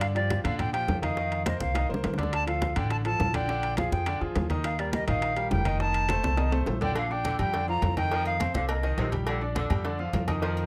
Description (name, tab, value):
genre	latin, salsa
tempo	208 BPM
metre	4/4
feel	straight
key	Bb major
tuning	A4 = 440 Hz
part	bright silver concert flute	melody	0.0-9.1 s	D5 to Bb5	-32 LUFS	equal	none
part	bright grand piano	accompaniment	0.0-10.7 s	D3 to D6	-35 LUFS	equal	none
part	upright bass	bass	0.0-10.7 s	F1 to Bb2	-32 LUFS	equal	none
part	bongos and cowbell	percussion	0.0-10.6 s	none	-40 LUFS	equal	none
part	congas	percussion	0.0-10.7 s	none	-36 LUFS	equal	none
part	timbales and agogo bells	percussion	0.0-10.7 s	none	-39 LUFS	equal	none
part	warm saxophone section	second line	7.0-10.7 s	C3 to F3	-39 LUFS	equal	none
room	little or no reverb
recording	close, detailed microphones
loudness	-28 LUFS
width	mono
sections	0.0-7.0 A section; 7.0-10.7 B section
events	drum fill 1.8-2.3, 6.2-7.0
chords	0.0 Gm7; 1.2 F7sus4; 2.3 Dm; 3.5 Bb7; 4.6 Eb; 5.8 F7; 7.0 Bb6; 8.1 F7sus4; 9.3 Bb6